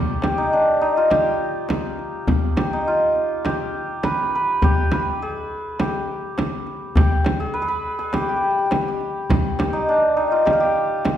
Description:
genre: Persian modal ensemble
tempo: 102 BPM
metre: 4/4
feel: straight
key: G dastgah homayun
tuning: A4 = 441 Hz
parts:
  - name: santur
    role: melody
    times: 0.0-11.2 s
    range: D4 to B4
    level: -20 LUFS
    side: equal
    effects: none
  - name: tombak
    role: percussion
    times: 0.1-11.2 s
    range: none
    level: -24 LUFS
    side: left 1 dB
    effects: none
  - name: frame drum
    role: percussion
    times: 0.2-11.2 s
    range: none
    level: -24 LUFS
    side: right 1 dB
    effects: none
room: wet recital hall reverb, RT60 1.5 s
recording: recorded in a church or concert hall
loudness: -18 LUFS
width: side -10 dB against mid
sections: 0.0-11.2 A section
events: none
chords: none

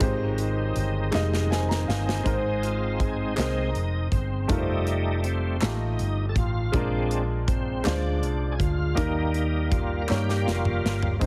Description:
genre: slow gospel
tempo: 54 BPM (dotted quarters)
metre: 6/8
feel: straight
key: Ab major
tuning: A4 = 441 Hz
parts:
  - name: clear concert grand piano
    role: accompaniment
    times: 0.0-11.3 s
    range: Ab2 to Bb5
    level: -33 LUFS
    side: equal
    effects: none
  - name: bright tonewheel organ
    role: sustained chords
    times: 0.0-11.3 s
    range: Eb3 to Bb4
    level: -32 LUFS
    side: equal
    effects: slow rotary speaker, overdrive, chorus vibrato
  - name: hollow-body short-scale fingered electric bass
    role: bass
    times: 0.0-11.3 s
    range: F1 to G2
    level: -29 LUFS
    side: equal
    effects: none
  - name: modern studio drum kit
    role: drums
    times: 0.0-11.3 s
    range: hi-hat, kick drum, snare drum, toms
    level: -31 LUFS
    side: equal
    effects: none
  - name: group handclap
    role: percussion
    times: 1.1-10.4 s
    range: none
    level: -38 LUFS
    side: equal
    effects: none
room: light reverb, small room ambience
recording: heavily compressed radio sound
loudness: -26 LUFS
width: mono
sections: 0.0-2.3 A section; 2.3-11.2 B section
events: drum fill 1.1-2.3, 10.1-11.2; grand piano fill 1.1-2.3; tonewheel organ solo 2.3-11.2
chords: 0.0 Abmaj7; 2.3 Ab; 4.5 F7; 6.7 Bb7; 9.0 Eb

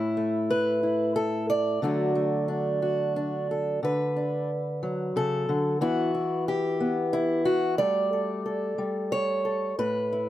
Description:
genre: folk, solo fingerstyle acoustic guitar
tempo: 91 BPM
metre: 3/4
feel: straight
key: D major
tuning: A4 = 440 Hz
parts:
  - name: fingerpicked acoustic archtop guitar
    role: solo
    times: 0.0-10.3 s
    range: A2 to D5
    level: -24 LUFS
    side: equal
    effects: none
room: light reverb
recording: close, detailed microphones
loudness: -24 LUFS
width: side -13 dB against mid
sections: 0.0-3.8 A section; 3.8-10.3 B section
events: none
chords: 0.0 A5; 1.8 D; 5.8 Emadd9; 7.8 Gsus2; 9.8 Asus2

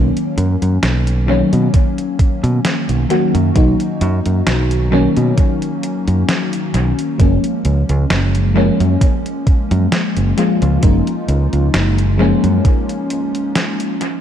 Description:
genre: vaporwave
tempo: 66 BPM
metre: 4/4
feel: swing 54% on 16ths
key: B lydian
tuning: A4 = 441 Hz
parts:
  - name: FM electric piano with soft pad layer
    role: accompaniment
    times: 0.0-14.2 s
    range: D#3 to F#4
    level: -17 LUFS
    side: left 2 dB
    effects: wide subtle chorus, vintage 12-bit sampler grit, analog delay
  - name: fingered electric bass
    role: bass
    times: 0.0-12.6 s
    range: F#1 to B2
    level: -15 LUFS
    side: right 1 dB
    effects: tube saturation
  - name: detuned 8-bit digital drum machine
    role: drums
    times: 0.2-14.2 s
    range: hi-hat, snare drum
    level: -22 LUFS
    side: equal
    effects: studio reverb, analog delay
  - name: electronic kick drum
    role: drums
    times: 1.7-12.8 s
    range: none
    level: -13 LUFS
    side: right 1 dB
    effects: studio reverb
room: light reverb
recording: echo-heavy mix, cassette tape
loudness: -13 LUFS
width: side -9 dB against mid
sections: 0.0-14.2 A section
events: none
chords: 0.0 Bmaj9; 7.2 F#maj7

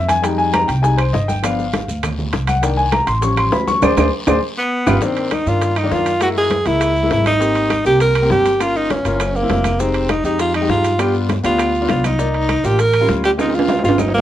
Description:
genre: Afro-Cuban jazz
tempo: 201 BPM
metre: 4/4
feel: straight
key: C minor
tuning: A4 = 440 Hz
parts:
  - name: warm grand piano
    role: accompaniment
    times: 0.0-14.0 s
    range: Eb3 to C#6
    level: -20 LUFS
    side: left 3 dB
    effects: none
  - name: upright bass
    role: bass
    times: 0.0-14.2 s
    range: F1 to G2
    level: -20 LUFS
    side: equal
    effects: none
  - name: congas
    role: percussion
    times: 0.1-14.2 s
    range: none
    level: -27 LUFS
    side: left 1 dB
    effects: none
  - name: guiro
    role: percussion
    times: 0.1-14.2 s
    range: none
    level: -36 LUFS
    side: left 4 dB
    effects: none
  - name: maracas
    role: percussion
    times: 0.1-14.2 s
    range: none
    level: -37 LUFS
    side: right 6 dB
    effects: none
  - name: timbales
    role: percussion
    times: 0.1-14.2 s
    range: none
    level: -23 LUFS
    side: right 5 dB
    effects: none
  - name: bongos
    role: percussion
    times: 0.2-14.1 s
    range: none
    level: -27 LUFS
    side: left 5 dB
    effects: none
  - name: claves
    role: percussion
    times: 0.5-14.1 s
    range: none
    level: -30 LUFS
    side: right 6 dB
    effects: none
  - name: clear tenor saxophone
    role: melody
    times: 4.6-14.2 s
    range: A#3 to Bb4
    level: -17 LUFS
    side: right 1 dB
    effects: plate reverb
room: moderate small room reverb, RT60 0.5 s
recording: worn, warbling old tape, cassette tape, warbly pitch drift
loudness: -14 LUFS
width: side -12 dB against mid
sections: 0.0-5.0 A section; 5.0-14.2 B section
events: grand piano solo 0.0-5.0; band accent 3.8-5.0; drum fill 4.1-5.0, 13.4-14.2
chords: 0.2 Fm7; 1.4 G7; 2.6 Cm7; 3.2 Aaug7; 3.8 Csus2/D; 4.4 G7; 5.0 Cm7; 6.2 F#9; 7.4 Abmaj9; 8.6 Gm7b5; 9.2 F#7#11; 9.8 Fm7; 11.0 G7; 12.2 Cm7; 12.8 Aaug7; 13.4 Dm7b5

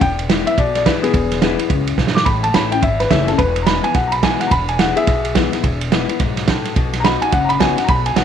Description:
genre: rockabilly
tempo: 213 BPM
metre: 4/4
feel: swing 62% on 8ths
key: E major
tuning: A4 = 439 Hz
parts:
  - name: dark upright piano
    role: melody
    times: 0.0-8.2 s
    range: B3 to D6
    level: -18 LUFS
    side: left 1 dB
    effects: none
  - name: picked steel-string acoustic guitar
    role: accompaniment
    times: 0.0-8.2 s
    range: E2 to F#4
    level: -22 LUFS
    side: left 13 dB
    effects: none
  - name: upright bass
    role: bass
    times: 0.0-8.2 s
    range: E1 to C#2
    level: -22 LUFS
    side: equal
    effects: none
  - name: vintage drum kit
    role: drums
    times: 0.0-8.2 s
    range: kick drum, ride cymbal, snare drum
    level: -18 LUFS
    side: right 4 dB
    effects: none
room: light reverb, small room ambience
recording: 1960s-style stereo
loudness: -14 LUFS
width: side -8 dB against mid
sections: 0.0-8.2 A section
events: upright piano solo 0.0-8.2; drum fill 2.0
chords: 0.0 E; 2.3 A; 3.4 E; 6.8 B

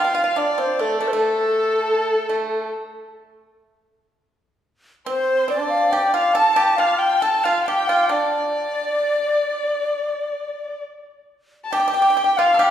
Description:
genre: chinese traditional, Chinese chamber ensemble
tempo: 68 BPM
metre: 4/4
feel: rubato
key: D yu mode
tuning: A4 = 440 Hz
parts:
  - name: breathy bright xiao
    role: melody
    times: 0.0-12.7 s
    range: A4 to A5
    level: -19 LUFS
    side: equal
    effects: none
  - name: clear erhu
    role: second line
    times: 0.0-12.7 s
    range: A4 to A5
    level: -24 LUFS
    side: left 2 dB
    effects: none
  - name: pipa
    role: second line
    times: 0.0-12.7 s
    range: A3 to A4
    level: -24 LUFS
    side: right 3 dB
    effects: none
room: wet recital hall reverb, RT60 1.9 s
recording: heard from further back in the room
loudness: -17 LUFS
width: side -10 dB against mid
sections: 0.0-11.7 A section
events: none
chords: none

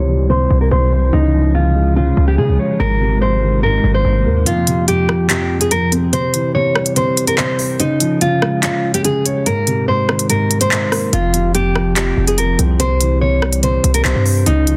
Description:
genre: hip hop, drill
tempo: 144 BPM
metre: 4/4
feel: half-time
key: F minor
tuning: A4 = 437 Hz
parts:
  - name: nylon-string guitar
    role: melody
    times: 0.0-14.8 s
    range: Eb4 to Db5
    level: -21 LUFS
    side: equal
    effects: low-pass filter, tape echo
  - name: dark grand piano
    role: accompaniment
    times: 0.0-14.8 s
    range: F2 to Db5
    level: -21 LUFS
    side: equal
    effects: low-pass filter
  - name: granular cloud pad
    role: sustained chords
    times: 0.0-4.4 s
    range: C3 to F4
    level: -27 LUFS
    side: equal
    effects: built-in reverb, low-pass filter
  - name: hard-hitting 808-style bass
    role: bass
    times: 0.0-4.5, 11.1-14.8 s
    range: F1 to Db3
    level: -18 LUFS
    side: equal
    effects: none
  - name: drill drum kit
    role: drums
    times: 4.5-14.8 s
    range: handclaps, hi-hat, rim click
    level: -20 LUFS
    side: equal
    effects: none
room: light reverb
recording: dense, heavily limited modern master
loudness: -15 LUFS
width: mono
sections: 0.0-4.5 A section; 4.5-14.8 B section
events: filter sweep 0.0-4.5; kick muted 4.5-11.1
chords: 0.0 C; 1.1 Db; 2.8 Abadd9; 4.5 F5; 6.1 C; 7.8 Db; 9.5 Abadd9; 11.1 F5; 12.8 C

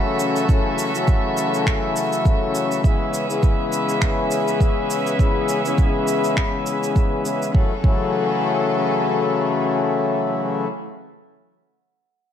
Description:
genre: organic downtempo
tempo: 102 BPM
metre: 4/4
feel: swing 56% on 16ths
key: F# minor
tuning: A4 = 438 Hz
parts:
  - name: hand-pumped harmonium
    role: accompaniment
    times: 0.0-10.7 s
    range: C#3 to E4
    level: -21 LUFS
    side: left 3 dB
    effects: sidechain pumping, low-pass filter, digital delay
  - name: rich chamber string section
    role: sustained chords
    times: 0.0-10.7 s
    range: F#3 to E5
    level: -26 LUFS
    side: right 1 dB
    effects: sidechain pumping, low-pass filter
  - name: bronze singing bowl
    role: texture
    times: 0.0-7.6 s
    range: none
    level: barely audible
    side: none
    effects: none
  - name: electronic cabasa and finger snaps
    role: drums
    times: 0.2-7.5 s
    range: none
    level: -29 LUFS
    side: right 2 dB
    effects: none
  - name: electronic kick drum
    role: drums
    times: 0.5-8.0 s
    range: none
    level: -18 LUFS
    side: right 1 dB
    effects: none
room: moderate echo chamber reverb, RT60 1.2 s, small room ambience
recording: dark, warm production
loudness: -18 LUFS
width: side -9 dB against mid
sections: 0.0-7.5 A section; 7.5-9.9 B section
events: filter sweep on harmonium 0.0-7.5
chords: 0.0 F#m7; 2.8 C#m7; 7.5 F#m7

